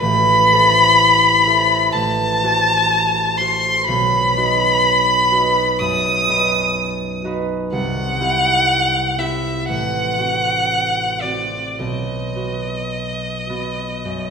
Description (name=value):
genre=classical, romantic duo for violin and harp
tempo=52-64 BPM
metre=4/4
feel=rubato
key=unclear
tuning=A4 = 442 Hz
part: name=rich violin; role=melody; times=0.0-14.3 s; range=D5 to D#6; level=-15 LUFS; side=left 1 dB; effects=none
part: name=concert harp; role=accompaniment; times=0.0-14.3 s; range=A1 to C5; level=-21 LUFS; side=right 2 dB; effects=none
room=wet recital hall reverb, RT60 1.6 s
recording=recorded in a church or concert hall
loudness=-14 LUFS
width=side -6 dB against mid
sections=0.0-14.3 A section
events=none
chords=0.0 Am; 1.9 F#dim/A; 3.9 B; 7.7 C; 9.7 F#dim/A; 11.8 B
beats=| 0.01 0.99 1.94 2.92 | 3.88 4.84 5.80 6.76 | 7.71 8.68 9.68 10.70 | 11.79 12.93 14.05